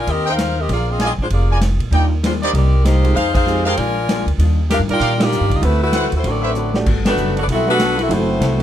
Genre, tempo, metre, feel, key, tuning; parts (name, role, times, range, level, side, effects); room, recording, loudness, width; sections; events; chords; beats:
jazz, big band swing; 194 BPM; 4/4; swing 61% on 8ths; Eb major; A4 = 440 Hz
clear saxophone section; melody; 0.0-8.6 s; Ab3 to Ab5; -19 LUFS; left 1 dB
upright bass; bass; 0.0-8.6 s; F1 to Bb2; -18 LUFS; equal
swinging big-band drum kit; drums; 0.1-8.6 s; crash cymbal, hi-hat, kick drum, ride cymbal, snare drum; -23 LUFS; equal
clear trumpet section; stabs; 0.3-6.5 s; D4 to Ab5; -21 LUFS; right 1 dB
hollow-body jazz guitar; accompaniment; 1.9-8.6 s; Bb2 to B4; -26 LUFS; left 5 dB
warm grand piano; accompaniment; 1.9-8.6 s; G3 to D5; -24 LUFS; right 4 dB
brilliant trombone section; second line; 6.3-8.6 s; D3 to F#4; -24 LUFS; equal
light reverb; close, detailed microphones; -14 LUFS; side -11 dB against mid
0.0-6.9 A section; 6.9-8.6 B section
band accent 3.3, 5.2, 7.0; drum fill 6.5-6.9
0.0 Cm7; 0.7 Bb7; 1.9 Ebmaj7; 2.5 Cm7; 3.2 Fm7; 3.8 Bb7; 4.4 Ebmaj9; 5.6 D13; 6.9 Gmaj9; 8.1 F#m7b5
0.07 0.38 | 0.69 0.99 1.30 1.61 | 1.92 2.23 2.54 2.85 | 3.15 3.46 3.77 4.08 | 4.39 4.70 5.01 5.32 | 5.62 5.93 6.24 6.55 | 6.86 7.17 7.47 7.78 | 8.09 8.40